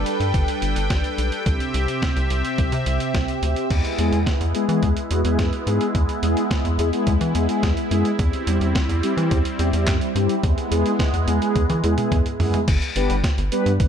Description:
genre	synth-pop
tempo	107 BPM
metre	4/4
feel	straight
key	unclear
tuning	A4 = 441 Hz
part	phased analog pad	sustained chords	0.0-12.7 s	C3 to G5	-25 LUFS	equal	phaser, chorus
part	rubbery square bass	bass	0.0-13.9 s	G1 to E3	-22 LUFS	equal	none
part	boom bap sampler-style drum kit	drums	0.1-13.9 s	crash cymbal, handclaps, hi-hat, kick drum, snare drum, toms	-23 LUFS	equal	none
part	mellow synth brass	accompaniment	4.0-13.7 s	G3 to B4	-23 LUFS	left 1 dB	chorus
room	light reverb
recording	dark, warm production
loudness	-18 LUFS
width	side -8 dB against mid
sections	0.0-3.7 A section; 3.7-12.7 B section; 12.7-13.9 C section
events	drum fill 11.6-12.7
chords	0.0 Gadd9; 1.5 C; 3.7 E; 8.2 C/E; 10.4 E; 12.7 G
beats	0.34 0.90 | 1.46 2.02 2.58 3.15 | 3.71 4.27 4.83 5.39 | 5.95 6.51 7.07 7.63 | 8.19 8.75 9.31 9.87 | 10.44 11.00 11.56 12.12 | 12.68 13.24 13.80

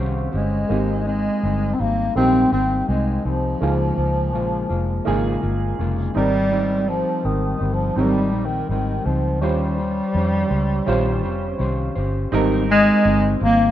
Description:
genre	indie pop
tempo	83 BPM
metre	4/4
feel	straight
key	Ab major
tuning	A4 = 438 Hz
part	breathy bass clarinet	melody	0.0-13.7 s	Eb3 to C4	-20 LUFS	equal	analog chorus, analog delay
part	mellow electric guitar	accompaniment	0.0-13.7 s	Ab2 to C5	-26 LUFS	left 5 dB	lush chorus, warbly pitch drift
part	warm upright piano	accompaniment	0.0-13.7 s	Bb3 to C5	-27 LUFS	right 6 dB	cassette tape
part	vintage muted fingered electric bass	bass	0.0-13.7 s	F1 to F2	-23 LUFS	equal	none
room	light reverb, studio ambience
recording	rough home demo mix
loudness	-18 LUFS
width	side -12 dB against mid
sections	0.0-12.3 A section; 12.3-13.7 B section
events	none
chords	0.0 Eb13; 0.7 Abmaj7; 3.6 Db6; 6.2 Abmaj7; 9.4 Eb13; 12.3 Abmaj7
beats	| 0.71 1.43 2.16 2.89 | 3.61 4.34 5.06 5.79 | 6.52 7.24 7.97 8.69 | 9.42 10.15 10.87 11.60 | 12.32 13.05

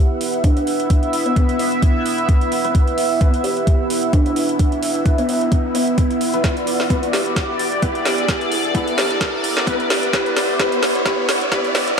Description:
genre	bass house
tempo	130 BPM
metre	4/4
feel	swing 55% on 16ths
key	unclear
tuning	A4 = 440 Hz
part	sweeping resonant pad	sustained chords	0.0-12.0 s	B3 to E5	-22 LUFS	right 1 dB	chorus, sidechain pumping
part	riser	sound effects	1.2-12.0 s	none	-28 LUFS	equal	none
part	ethereal airy pad	texture	0.0-12.0 s	E4 to E6	-27 LUFS	right 1 dB	ensemble chorus, built-in reverb, sidechain pumping
part	garage drum kit	drums	0.2-12.0 s	hi-hat, snare drum	-23 LUFS	right 1 dB	overdrive, high-pass filter on hats, high-pass filter on snare, high-pass filter on toms
part	kalimba	melody	0.4-11.7 s	B3 to G4	-24 LUFS	equal	diffuse ambient delay
part	electronic kick drum	drums	0.4-11.6 s	none	-16 LUFS	equal	overdrive
part	orchestra-hit-like synth stab	stabs	1.4-12.0 s	B3 to B4	-26 LUFS	left 2 dB	built-in reverb, phaser, sidechain pumping, diffuse ambient delay
room	moderate lush hall reverb, RT60 1.6 s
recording	dreamy mix soaked in reverb, high-pass filter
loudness	-16 LUFS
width	side -6 dB against mid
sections	0.0-12.0 A section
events	build-up 0.0-12.0; filter sweep on synth stab 0.0-12.0; filter sweep 0.0-12.0; riser 1.2-12.0; drum fill 6.4-12.0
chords	0.0 E5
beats	0.44 | 0.90 1.36 1.82 2.29 | 2.75 3.21 3.67 4.13 | 4.59 5.06 5.52 5.98 | 6.44 6.90 7.36 7.83 | 8.29 8.75 9.21 9.67 | 10.13 10.60 11.06 11.52 | 11.98

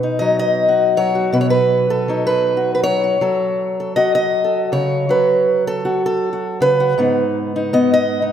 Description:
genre	folk, solo fingerstyle acoustic guitar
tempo	64 BPM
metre	4/4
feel	swing 61% on 8ths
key	B mixolydian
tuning	A4 = 444 Hz
part	fingerpicked acoustic archtop guitar	solo	0.0-8.3 s	G#2 to D#5	-14 LUFS	equal	none
room	wet concert hall reverb, RT60 2.1 s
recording	recorded in a church or concert hall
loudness	-14 LUFS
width	side -9 dB against mid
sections	0.0-8.3 A section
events	none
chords	0.0 B; 3.2 F#m; 7.0 G#m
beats	0.38 1.32 2.27 | 3.21 4.15 5.09 6.03 | 6.98 7.92

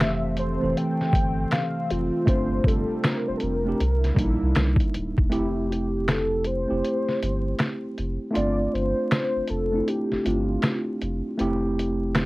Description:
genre	lo-fi hip hop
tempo	79 BPM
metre	4/4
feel	swing 62% on 16ths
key	F major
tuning	A4 = 440 Hz
part	warm velvety synth lead	melody	0.0-11.0 s	E4 to G5	-28 LUFS	left 1 dB	chorus, tape echo, plate reverb
part	mellow tine electric piano	accompaniment	0.0-12.3 s	E3 to A4	-26 LUFS	right 1 dB	medium stereo tremolo
part	lush unison pad	sustained chords	0.0-5.3 s	C3 to E4	-36 LUFS	equal	chorus, plate reverb
part	soft dub sub bass	bass	0.0-12.3 s	D1 to C2	-27 LUFS	equal	none
part	lo-fi sampler-style drum kit	drums	0.0-12.3 s	finger snaps, hi-hat, kick drum, snare drum	-24 LUFS	equal	none
room	light reverb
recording	worn, warbling old tape, cassette tape, vinyl crackle, warbly pitch drift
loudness	-22 LUFS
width	side -20 dB against mid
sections	0.0-5.3 A section; 5.3-12.3 B section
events	kick muted 5.3-12.3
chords	0.0 Fmaj7; 2.3 G7sus4; 3.8 C9; 5.3 Fmaj7; 8.4 G7sus4; 11.4 Fmaj7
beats	0.00 0.76 1.51 | 2.27 3.03 3.79 4.55 | 5.31 6.07 6.83 7.59 | 8.35 9.11 9.87 10.63 | 11.39 12.15

